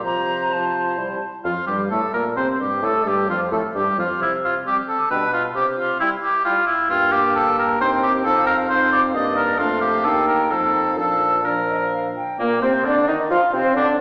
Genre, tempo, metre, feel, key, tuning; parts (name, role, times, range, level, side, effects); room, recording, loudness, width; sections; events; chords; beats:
quick classical-period movement for wind quintet; 131 BPM; 3/4; rubato; F major, Bb major from 6.9 s; A4 = 441 Hz
concert flute; melody; 0.0-14.0 s; F4 to Bb5; -30 LUFS; equal
warm oboe; second line; 0.0-13.9 s; Bb3 to Eb5; -22 LUFS; equal
clear clarinet; accompaniment; 0.0-13.9 s; F3 to F4; -32 LUFS; equal
warm French horn; accompaniment; 0.0-14.0 s; F3 to F4; -28 LUFS; equal
mellow bassoon; bass; 0.0-14.0 s; Eb2 to F3; -30 LUFS; equal
wet scoring stage reverb, RT60 1.7 s; -20 LUFS; mono
0.0-1.4 A section; 1.4-12.4 B section; 12.4-14.0 C section
0.0 F/C; 1.0 C; 1.4 F; 2.4 C5; 2.8 F; 4.2 C5; 5.1 G/B; 5.5 C; 6.9 Gm; 7.8 Cm/Eb; 8.3 F5; 9.2 Gm; 9.6 Dm/F; 10.1 Eb; 10.5 F7; 11.0 Bb; 13.3 Csus4
| 0.04 0.51 0.98 | 1.45 1.91 2.37 | 2.83 3.29 3.75 | 4.21 4.66 5.10 | 5.55 6.00 6.45 | 6.90 7.35 7.80 | 8.25 8.70 9.15 | 9.60 10.06 10.52 | 10.98 11.46 11.93 | 12.40 12.85 13.31 | 13.77